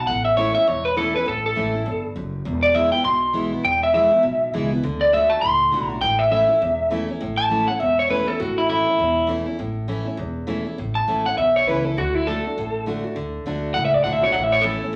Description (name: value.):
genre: rockabilly.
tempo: 202 BPM.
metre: 4/4.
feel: swing 60% on 8ths.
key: A mixolydian.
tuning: A4 = 440 Hz.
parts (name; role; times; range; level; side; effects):
electric guitar through a small old amp; melody; 0.0-15.0 s; E4 to C6; -21 LUFS; equal; none.
picked steel-string acoustic guitar; accompaniment; 0.0-15.0 s; E2 to F#4; -29 LUFS; equal; none.
upright bass; bass; 0.0-14.8 s; E1 to D2; -32 LUFS; equal; none.
room: moderate large studio reverb, RT60 0.8 s.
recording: none.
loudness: -21 LUFS.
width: mono.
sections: 0.0-7.2 A section; 7.2-15.0 B section.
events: clean electric guitar solo 0.0-7.2.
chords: 0.1 A; 2.5 E; 4.8 D; 6.0 A; 12.0 D; 14.4 A.